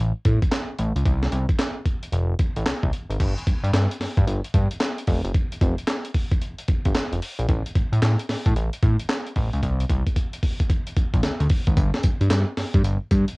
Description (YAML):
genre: R&B, new jack swing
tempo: 112 BPM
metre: 4/4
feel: swing 64% on 16ths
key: unclear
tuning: A4 = 440 Hz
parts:
  - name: fat analog bass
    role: bass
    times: 0.0-13.3 s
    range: F1 to A2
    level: -22 LUFS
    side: equal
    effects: none
  - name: breakbeat sampler-style drum kit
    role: drums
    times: 0.3-13.4 s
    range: crash cymbal, handclaps, hi-hat, kick drum, snare drum, tambourine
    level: -22 LUFS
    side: equal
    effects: cassette tape
room: little or no reverb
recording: home recording on cassette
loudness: -20 LUFS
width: side -28 dB against mid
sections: 0.0-3.2 A section; 3.2-11.8 B section; 11.8-13.4 C section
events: drum fill 9.6-11.8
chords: none